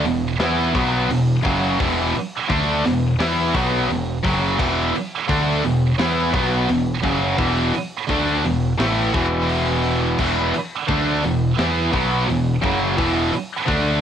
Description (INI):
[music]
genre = heavy metal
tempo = 86 BPM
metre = 4/4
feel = straight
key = unclear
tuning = A4 = 442 Hz
[part]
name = heavy high-gain guitar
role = riff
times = 0.0-14.0 s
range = E2 to E4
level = -22 LUFS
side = right 6 dB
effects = distortion, cassette tape
[part]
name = tight distorted guitar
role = riff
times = 0.0-14.0 s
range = E2 to E4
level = -26 LUFS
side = left 10 dB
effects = distortion, cassette tape
[part]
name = tight distorted guitar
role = riff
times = 0.0-14.0 s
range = E2 to E4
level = -22 LUFS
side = left 2 dB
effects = distortion, cassette tape
[part]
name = growling picked electric bass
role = bass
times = 0.0-14.0 s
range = E1 to E2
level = -25 LUFS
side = left 1 dB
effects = overdrive
[part]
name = tight metal drum kit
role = drums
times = 0.1-13.8 s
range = crash cymbal, hi-hat, kick drum, snare drum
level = -28 LUFS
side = left 1 dB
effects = cassette tape
[sound]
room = little or no reverb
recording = home recording on cassette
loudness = -17 LUFS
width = side -9 dB against mid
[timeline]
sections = 0.0-14.0 A section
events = half time 0.0-14.0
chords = 0.0 E5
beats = 0.40 1.10 | 1.80 2.50 3.20 3.90 | 4.60 5.30 6.00 6.69 | 7.39 8.09 8.79 9.49 | 10.19 10.89 11.59 12.29 | 12.98 13.68